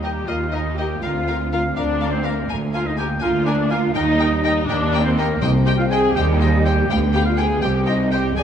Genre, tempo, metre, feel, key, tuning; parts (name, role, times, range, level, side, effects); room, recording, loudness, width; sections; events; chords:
quick classical-period movement for symphony orchestra; 82 BPM (dotted quarters); 6/8; rubato; Eb major, C minor from 5.4 s; A4 = 440 Hz
warm studio violin section; melody; 0.0-8.4 s; Eb5 to Ab5; -30 LUFS; left 5 dB
mellow hollow flute section; second line; 0.0-8.4 s; Bb4 to Ab5; -28 LUFS; left 3 dB
warm oboe; second line; 0.0-8.4 s; Bb4 to Ab5; -28 LUFS; equal
warm studio violin section; second line; 0.0-8.4 s; Bb4 to F5; -32 LUFS; left 3 dB
dark studio viola section; accompaniment; 0.0-8.4 s; Bb3 to Ab4; -23 LUFS; equal
mellow French horn section; sustained chords; 0.0-8.4 s; G3 to C4; -28 LUFS; left 3 dB
rich studio double bass section; bass; 0.0-8.4 s; F1 to Eb2; -23 LUFS; right 2 dB
warm studio cello section; bass; 0.0-8.4 s; C2 to F2; -24 LUFS; right 2 dB
timpani; percussion; 5.4-6.1 s; C3; -24 LUFS; left 1 dB
moderate scoring stage reverb, RT60 2.1 s; -17 LUFS; side -8 dB against mid
0.0-8.4 A section
0.0 Eb; 1.0 Bb/D; 2.5 Bb7/D; 4.0 Eb; 5.4 Cm; 6.2 Cm/Eb; 6.9 G7/D; 7.6 Cm